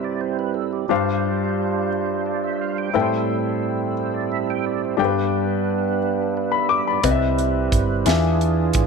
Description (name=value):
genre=slow gospel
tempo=59 BPM (dotted quarters)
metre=6/8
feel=straight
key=unclear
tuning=A4 = 439 Hz
part: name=warm grand piano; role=accompaniment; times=0.0-8.9 s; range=G2 to D6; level=-22 LUFS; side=left 8 dB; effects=none
part: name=tonewheel organ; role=sustained chords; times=0.0-8.9 s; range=E3 to G5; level=-23 LUFS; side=right 13 dB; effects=overdrive, chorus vibrato, slow rotary speaker
part: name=hollow-body short-scale fingered electric bass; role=bass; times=7.0-8.9 s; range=G1 to E2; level=-22 LUFS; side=right 2 dB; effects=none
part: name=crisp fusion drum kit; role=drums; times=7.0-8.9 s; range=hi-hat, kick drum, snare drum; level=-23 LUFS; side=right 2 dB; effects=none
room=moderate echo chamber reverb, RT60 2.2 s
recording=1960s-style stereo with parts hard left and right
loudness=-19 LUFS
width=side -4 dB against mid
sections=0.0-8.9 A section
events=none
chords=0.0 Cmaj7; 0.9 G7sus4; 2.9 Am7; 5.0 G; 8.1 E7b9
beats=| 0.90 1.93 | 2.95 3.97 | 4.99 6.02 | 7.04 8.06